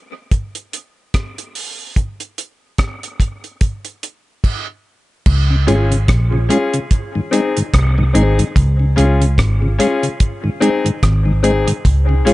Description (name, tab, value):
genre	dub reggae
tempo	73 BPM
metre	4/4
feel	swing 58% on 16ths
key	Db major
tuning	A4 = 435 Hz
part	deep reggae drum kit	drums	0.3-12.3 s	crash cymbal, hi-hat, kick drum, rim click	-18 LUFS	equal	none
part	vintage muted picked electric bass	bass	5.3-12.3 s	Ab1 to Db2	-14 LUFS	equal	none
part	mellow tonewheel organ	accompaniment	5.5-12.3 s	Ab2 to F4	-18 LUFS	left 1 dB	slow rotary speaker
part	mellow electric guitar	accompaniment	5.7-5.8 s	F4 to Db5	-28 LUFS	right 4 dB	ensemble chorus, dub echo
part	warm upright piano	stabs	5.7-12.3 s	C4 to Ab4	-19 LUFS	left 3 dB	dub echo
room	light reverb, studio reverb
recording	nothing above 10.8 kHz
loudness	-14 LUFS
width	side -18 dB against mid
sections	0.0-5.3 A section; 5.3-12.3 B section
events	break 0.0-5.3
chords	0.0 N.C.; 5.3 Db; 6.9 Ab; 8.6 Db; 10.2 Ab